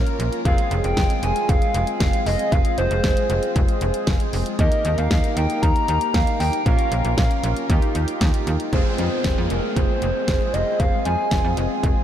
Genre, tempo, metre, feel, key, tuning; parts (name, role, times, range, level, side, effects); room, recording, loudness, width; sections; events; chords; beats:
synth-pop; 116 BPM; 4/4; straight; F minor; A4 = 440 Hz
analog synth brass; accompaniment; 0.0-12.0 s; Ab3 to Bb4; -26 LUFS; equal; chorus
slap-like FM bass; bass; 0.0-11.9 s; F1 to F2; -23 LUFS; equal
pop drum kit; drums; 0.1-12.0 s; hi-hat, kick drum, snare drum; -22 LUFS; equal
hollow clarinet-like synth lead; melody; 0.5-11.5 s; Bb4 to Bb5; -24 LUFS; equal; chorus, analog delay
downlifter; sound effects; 8.7-12.0 s; -30 LUFS; right 2 dB
moderate huge ambient reverb, RT60 8.0 s; dreamy mix soaked in reverb; -18 LUFS; side -10 dB against mid
0.0-8.7 A section; 8.7-12.0 B section
0.5 Fm; 4.6 Eb; 6.7 Bbm; 7.7 Ebadd9; 8.7 Fm
| 0.45 0.97 1.49 2.00 | 2.52 3.04 3.56 4.07 | 4.59 5.11 5.62 6.14 | 6.66 7.18 7.69 8.21 | 8.73 9.25 9.76 10.28 | 10.80 11.31 11.83